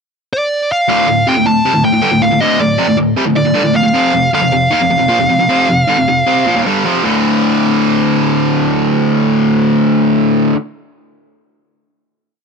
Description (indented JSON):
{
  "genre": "metal",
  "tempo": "156 BPM",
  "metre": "4/4",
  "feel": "straight",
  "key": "D minor",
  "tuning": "A4 = 440 Hz",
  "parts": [
    { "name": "high-gain lead guitar", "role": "melody", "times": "0.3-6.6 s", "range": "D5 to A5", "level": "-14 LUFS", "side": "equal", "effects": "distortion" },
    { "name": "distorted electric guitar", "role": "riff", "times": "0.9-10.6 s", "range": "D2 to C4", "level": "-12 LUFS", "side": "equal", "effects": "overdrive" }
  ],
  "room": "little or no reverb",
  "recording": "dark, warm production",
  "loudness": "-10 LUFS",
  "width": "side -5 dB against mid",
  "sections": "0.0-0.9 pickup bar; 0.9-7.0 riff; 7.0-10.1 final chord",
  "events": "none",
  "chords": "0.0 N.C.; 0.9 Dm; 3.9 F5; 7.0 D5",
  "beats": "0.12 0.51 | 0.89 1.27 1.65 2.03 | 2.41 2.80 3.18 3.56 | 3.94 4.33 4.71 5.09 | 5.48 5.86 6.25 6.63 | 7.02 7.41 7.79 8.18 | 8.57 8.96 9.34 9.73"
}